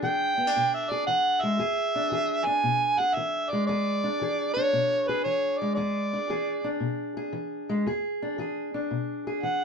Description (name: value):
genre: acoustic country blues, solo or duo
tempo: 115 BPM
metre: 4/4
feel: swing 68% on 8ths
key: E mixolydian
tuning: A4 = 440 Hz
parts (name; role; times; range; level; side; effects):
- overdriven harmonica; melody; 0.0-9.6 s; B4 to G#5; -25 LUFS; right 2 dB; none
- fingerpicked steel-string acoustic guitar; accompaniment; 0.0-9.6 s; E2 to G#4; -29 LUFS; left 1 dB; none
room: moderate small room reverb, RT60 0.5 s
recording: dark, warm production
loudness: -24 LUFS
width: side -6 dB against mid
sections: 0.0-1.6 A section; 1.6-9.6 B section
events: harmonica solo 0.0-1.6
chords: 0.0 E7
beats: 0.04 0.56 1.08 | 1.60 2.12 2.64 3.16 | 3.69 4.21 4.73 5.25 | 5.78 6.30 6.82 7.34 | 7.86 8.39 8.91 9.43